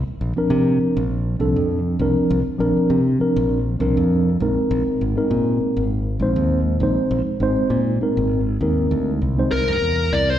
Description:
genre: jazz.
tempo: 100 BPM.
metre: 4/4.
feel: swing 54% on 16ths.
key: unclear.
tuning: A4 = 440 Hz.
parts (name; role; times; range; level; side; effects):
modern bright fingered electric bass; bass; 0.0-10.4 s; Ab1 to C3; -21 LUFS; equal; none.
mellow tine electric piano; accompaniment; 0.4-10.3 s; F3 to C5; -20 LUFS; equal; medium stereo tremolo, plate reverb, slapback echo.
bluesy overdriven lead guitar; melody; 9.5-10.4 s; Bb4 to D5; -19 LUFS; left 2 dB; distortion, plate reverb, slapback echo.
room: moderate club reverb, RT60 0.7 s.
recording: live gig heard through the venue's PA, recital hall reverb.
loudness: -17 LUFS.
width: side -11 dB against mid.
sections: 0.0-9.5 A section.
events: none.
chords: 0.0 C9sus4; 4.4 Bb9sus4; 9.5 C7.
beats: 0.50 1.10 1.71 | 2.31 2.91 3.51 4.11 | 4.71 5.31 5.91 6.51 | 7.11 7.71 8.31 8.92 | 9.52 10.12.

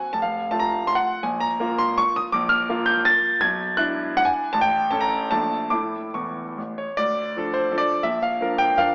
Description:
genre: classical, romantic triple-time dance for piano with dotted rhythms.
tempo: 135-181 BPM.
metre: 3/4.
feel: rubato.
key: D minor.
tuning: A4 = 440 Hz.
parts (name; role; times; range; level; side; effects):
clear grand piano; solo; 0.0-8.9 s; F1 to A6; -20 LUFS; equal; none.
room: wet recital hall reverb, RT60 1.6 s.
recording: AM radio sound.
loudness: -20 LUFS.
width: side -30 dB against mid.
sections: 0.0-7.0 A section; 7.0-8.9 B section.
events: none.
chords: 0.2 F; 1.2 Bb5; 3.4 E7/B; 4.5 A; 5.3 Bbmaj7; 5.7 A; 7.0 Dm; 8.1 Bb.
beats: | 0.16 0.53 0.90 | 1.25 1.61 1.97 | 2.32 2.69 3.06 | 3.41 3.78 4.17 | 4.53 4.90 5.30 | 5.70 6.14 6.57 | 6.97 7.35 7.72 | 8.05 8.41 8.78.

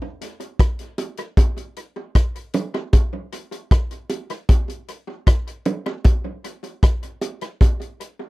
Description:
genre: reggae.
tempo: 77 BPM.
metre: 4/4.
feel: straight.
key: none.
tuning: none.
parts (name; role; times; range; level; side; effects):
vintage drum kit; drums; 0.2-8.2 s; hi-hat, kick drum, rim click; -17 LUFS; equal; none.
bongos; percussion; 1.0-7.8 s; none; -28 LUFS; right 3 dB; tape echo.
room: little or no reverb.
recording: dry, close 1970s-style studio recording.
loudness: -19 LUFS.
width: side -20 dB against mid.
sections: 0.0-8.3 A section.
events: none.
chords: none.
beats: 0.60 1.38 2.16 | 2.94 3.71 4.49 5.27 | 6.05 6.83 7.61.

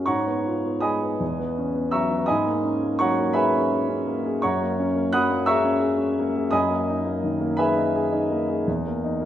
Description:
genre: classical, impressionist solo piano.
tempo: 56 BPM (dotted quarters).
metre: 6/8.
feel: rubato.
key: G# minor.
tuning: A4 = 441 Hz.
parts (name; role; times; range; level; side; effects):
warm concert grand piano; solo; 0.0-9.3 s; E2 to F#6; -21 LUFS; equal; none.
room: moderate scoring stage reverb, RT60 1.7 s.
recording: none.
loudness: -21 LUFS.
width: side -11 dB against mid.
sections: 0.1-9.3 A section.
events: none.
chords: 0.1 G#m6; 1.2 E69; 2.3 G#m11; 4.4 F#9; 6.5 G#m9/F#; 8.7 D#5.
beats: | 0.07 1.21 | 2.29 3.35 | 4.42 5.47 | 6.53 7.58 | 8.67.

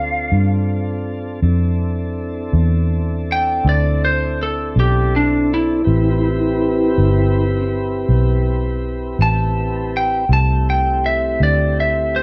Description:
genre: slow blues.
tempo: 54 BPM (dotted quarters).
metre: 12/8.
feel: straight.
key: A minor.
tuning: A4 = 437 Hz.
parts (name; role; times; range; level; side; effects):
lightly driven lead guitar; melody; 0.0-12.2 s; D4 to A5; -21 LUFS; equal; plate reverb.
tonewheel organ; sustained chords; 0.0-12.2 s; A3 to B4; -25 LUFS; equal; slow rotary speaker.
vintage muted fingered electric bass; bass; 0.0-12.2 s; G1 to G2; -20 LUFS; equal; none.
room: light reverb.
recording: none.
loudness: -18 LUFS.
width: mono.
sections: 0.0-12.2 A section.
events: lead electric guitar solo 0.0-12.2.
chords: 0.0 Dm7; 5.9 Am7.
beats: 0.33 | 1.44 2.54 3.65 4.76 | 5.87 6.97 8.08 9.19 | 10.30 11.40.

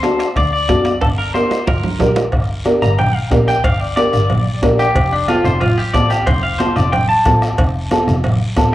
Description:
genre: latin, cumbia.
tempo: 183 BPM.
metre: 4/4.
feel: straight.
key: G minor.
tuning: A4 = 440 Hz.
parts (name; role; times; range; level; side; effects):
clean electric guitar; melody; 0.0-7.4 s; D4 to Bb5; -18 LUFS; left 1 dB; spring reverb, analog delay.
nylon-string guitar; accompaniment; 0.0-8.7 s; C4 to Bb4; -17 LUFS; equal; none.
bombo; percussion; 0.0-8.7 s; none; -20 LUFS; equal; none.
congas; percussion; 0.0-8.7 s; none; -24 LUFS; right 3 dB; none.
guiro; percussion; 0.0-8.7 s; none; -35 LUFS; left 2 dB; none.
timbales and cowbell; percussion; 0.0-8.7 s; none; -25 LUFS; right 3 dB; none.
dark double bass; bass; 0.4-8.7 s; F1 to F#2; -18 LUFS; equal; none.
room: moderate studio ambience, RT60 0.5 s.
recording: worn, warbling old tape, cassette tape, warbly pitch drift.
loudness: -13 LUFS.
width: side -14 dB against mid.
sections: 0.0-2.3 A section; 2.3-8.7 B section.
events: drum fill 1.0-2.3; clean electric guitar solo 2.3-8.7.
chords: 0.0 D7; 1.0 Gm; 5.0 F.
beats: 0.03 0.36 0.69 | 1.02 1.34 1.67 2.00 | 2.33 2.66 2.98 3.31 | 3.64 3.97 4.30 4.63 | 4.96 5.29 5.61 5.94 | 6.27 6.60 6.93 7.25 | 7.58 7.91 8.24 8.57.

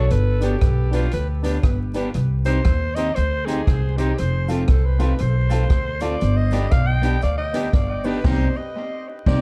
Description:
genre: ska.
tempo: 118 BPM.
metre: 4/4.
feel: swing 61% on 8ths.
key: C harmonic minor.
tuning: A4 = 441 Hz.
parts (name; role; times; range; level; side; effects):
raspy alto saxophone; melody; 0.0-9.4 s; F4 to G5; -29 LUFS; equal; dub echo.
electric guitar at the edge of break-up; accompaniment; 0.0-9.4 s; A3 to G4; -32 LUFS; equal; none.
upright bass; bass; 0.0-9.4 s; F1 to Eb2; -23 LUFS; equal; none.
swinging big-band drum kit; drums; 0.1-9.4 s; crash cymbal, hi-hat, kick drum, rim click, snare drum; -23 LUFS; equal; none.
cabasa; percussion; 0.1-8.1 s; none; -58 LUFS; equal; none.
dark upright piano; stabs; 0.4-9.4 s; B3 to C5; -32 LUFS; equal; dub echo.
room: light reverb.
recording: dark, warm production, vinyl crackle.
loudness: -20 LUFS.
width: mono.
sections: 0.0-9.4 A section.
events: alto saxophone solo 0.0-9.4; band accent 8.2-9.4.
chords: 0.1 G; 2.1 Cm; 4.2 F; 6.2 G; 8.2 Cm.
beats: | 0.11 0.62 1.13 1.64 | 2.15 2.65 3.16 3.67 | 4.18 4.69 5.20 5.71 | 6.21 6.72 7.23 7.74 | 8.25 8.76 9.27.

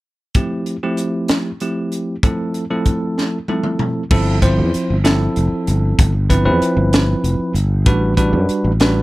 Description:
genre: electric jazz fusion.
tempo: 64 BPM (dotted quarters).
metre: 6/8.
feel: straight.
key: G mixolydian.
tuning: A4 = 440 Hz.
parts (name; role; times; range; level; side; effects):
crisp fusion drum kit; drums; 0.3-9.0 s; crash cymbal, hi-hat, kick drum, snare drum, toms; -17 LUFS; equal; none.
bell-like tine electric piano; accompaniment; 0.4-9.0 s; F3 to C5; -19 LUFS; right 1 dB; fast stereo tremolo.
sustaining fretless electric bass; bass; 4.1-9.0 s; F1 to F#2; -16 LUFS; equal; none.
room: little or no reverb.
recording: none.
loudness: -15 LUFS.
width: side -19 dB against mid.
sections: 0.4-4.1 A section; 4.1-9.0 B section.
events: drum fill 3.2-4.1.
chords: 0.4 G13sus4; 7.9 A13sus4.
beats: | 0.35 1.29 | 2.23 3.17 | 4.11 5.05 | 5.99 6.93 | 7.86 8.80.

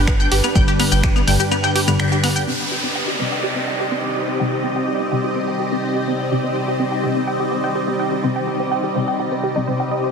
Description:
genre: melodic techno.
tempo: 125 BPM.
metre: 4/4.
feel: straight.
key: C harmonic minor.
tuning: A4 = 437 Hz.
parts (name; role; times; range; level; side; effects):
lush unison pad; sustained chords; 0.0-10.1 s; G3 to Eb5; -24 LUFS; equal; chorus, phaser, sidechain pumping.
synth brass stab; stabs; 0.0-10.1 s; G2 to C4; -24 LUFS; left 2 dB; chorus, sidechain pumping, ping-pong delay.
round analog bass; bass; 0.0-1.4 s; G1; -19 LUFS; equal; sidechain pumping.
granular cloud pad; texture; 0.0-10.1 s; D4 to C5; -26 LUFS; equal; built-in reverb, sidechain pumping.
tight sequenced synth; arpeggios; 0.1-10.1 s; B3 to G6; -24 LUFS; equal; chorus, phaser, sidechain pumping, ping-pong delay.
dusty soul sampler-style drum kit; drums; 0.1-2.4 s; ride cymbal, snare drum; -31 LUFS; right 4 dB; none.
electronic kick drum; drums; 0.1-1.1 s; none; -18 LUFS; equal; none.
punchy analog drum machine; drums; 0.1-2.5 s; claves, finger snaps, hi-hat, shaker; -23 LUFS; left 1 dB; soft clipping on snare.
analog drone; drone; 3.4-10.1 s; C3 to G3; -28 LUFS; equal; chorus, phaser, sidechain pumping.
downlifter; sound effects; 2.5-6.3 s; none; -26 LUFS; right 1 dB; none.
room: moderate lush hall reverb, RT60 1.8 s.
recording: dense, heavily limited modern master.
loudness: -17 LUFS.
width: side -6 dB against mid.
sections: 0.0-2.5 A section; 2.5-10.1 B section.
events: drop 0.0-2.5; band accent 2.0; filter sweep on synth arpeggio sound 2.5-10.1; filter sweep on synth stab 2.5-10.1.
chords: 0.0 G; 2.5 Cm.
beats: 0.07 | 0.55 1.03 1.51 1.99 | 2.47 2.95 3.43 3.91 | 4.39 4.87 5.35 5.83 | 6.31 6.79 7.27 7.75 | 8.23 8.71 9.19 9.67.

